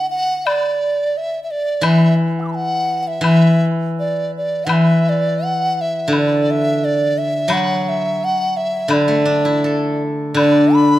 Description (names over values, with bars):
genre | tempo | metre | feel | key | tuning
chinese traditional, Chinese chamber ensemble | 80-88 BPM | 2/4 | rubato | D gong mode | A4 = 440 Hz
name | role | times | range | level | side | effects
mellow hollow large dizi | melody | 0.0-11.0 s | D5 to E6 | -18 LUFS | right 1 dB | none
woodblock | percussion | 0.5-10.5 s | none | -24 LUFS | left 3 dB | none
steel-string zither | accompaniment | 1.8-11.0 s | D3 to A4 | -16 LUFS | equal | none
breathy mellow xiao | second line | 10.4-11.0 s | D4 | -13 LUFS | left 2 dB | none
room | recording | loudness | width
wet recital hall reverb, RT60 1.4 s | none | -14 LUFS | side -14 dB against mid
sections
0.0-10.4 A section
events
none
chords
none